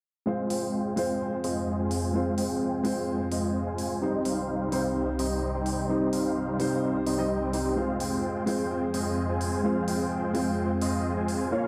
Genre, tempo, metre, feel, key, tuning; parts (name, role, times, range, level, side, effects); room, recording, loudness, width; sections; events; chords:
EDM, festival progressive house; 128 BPM; 4/4; straight; F minor; A4 = 440 Hz
dark grand piano; accompaniment; 0.3-11.7 s; G3 to Eb5; -33 LUFS; equal; dub echo
lush unison pad; sustained chords; 0.9-11.7 s; C2 to Bb4; -35 LUFS; equal; chorus
dense compressed supersaw; riff; 0.3-11.7 s; G3 to Ab5; -32 LUFS; equal; low-pass filter, dub echo
electronic hi-hat; drums; 0.5-11.4 s; -42 LUFS; equal; overdrive
wet lush hall reverb, RT60 2.4 s; dark, warm production; -28 LUFS; mono
0.3-11.7 A section
filter sweep on analog synth pad 0.3-11.7
0.3 Fm; 4.0 Cm; 7.8 Fm